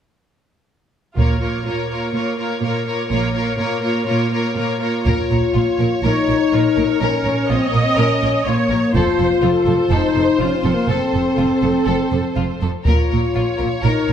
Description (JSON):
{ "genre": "cinematic, epic orchestral film score", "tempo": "123 BPM", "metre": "4/4", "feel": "straight", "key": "Bb harmonic minor", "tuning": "A4 = 441 Hz", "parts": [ { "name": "warm symphonic violin section", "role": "second line", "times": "1.2-14.1 s", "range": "F4 to Db5", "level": "-23 LUFS", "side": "left 4 dB", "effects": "none" }, { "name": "warm symphonic viola section", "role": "accompaniment", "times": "1.2-14.1 s", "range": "Bb3 to Eb5", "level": "-23 LUFS", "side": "right 2 dB", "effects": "none" }, { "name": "rich symphonic cello section", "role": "bass", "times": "1.2-14.1 s", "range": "F2 to Bb2", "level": "-23 LUFS", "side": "right 3 dB", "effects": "none" }, { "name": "rich symphonic double bass section", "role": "bass", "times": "1.2-14.1 s", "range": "F1 to Bb1", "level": "-24 LUFS", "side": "right 3 dB", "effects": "none" }, { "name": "taiko ensemble", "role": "drums", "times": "1.2-2.1, 5.1-6.0, 8.9-9.9, 12.9-13.8 s", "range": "none", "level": "-21 LUFS", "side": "equal", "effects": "none" }, { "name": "mellow French horn section", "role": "sustained chords", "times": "5.1-14.1 s", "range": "Bb3 to F4", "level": "-18 LUFS", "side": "left 3 dB", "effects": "none" } ], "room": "moderate scoring stage reverb, RT60 1.6 s", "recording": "none", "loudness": "-15 LUFS", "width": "side -9 dB against mid", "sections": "1.2-5.1 A section; 5.1-14.1 B section", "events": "none", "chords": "1.2 Bbm; 9.0 F; 12.9 Bbm" }